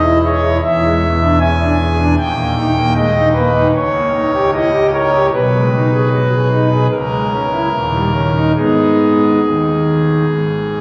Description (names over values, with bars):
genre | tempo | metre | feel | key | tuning
classical, chorale-style piece for pipe organ | 70-77 BPM | 4/4 | rubato | G# minor | A4 = 442 Hz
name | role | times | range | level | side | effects
pipe organ, foundations | solo | 0.0-10.8 s | C#1 to G#5 | -14 LUFS | equal | none
room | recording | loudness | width
wet cathedral reverb, RT60 5.2 s | recorded on a phone in the room, studio reverb | -14 LUFS | mono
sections
0.0-10.8 A section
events
none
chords
0.0 C#m/E; 0.6 E7; 2.2 D#; 3.7 D#7/C#; 5.3 G#m/B; 6.9 A#m7b5/C#; 7.7 D#7; 8.6 G#m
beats
0.62 1.40 | 2.18 2.96 3.74 4.53 | 5.31 6.10 6.90 7.72 | 8.55 9.41 10.27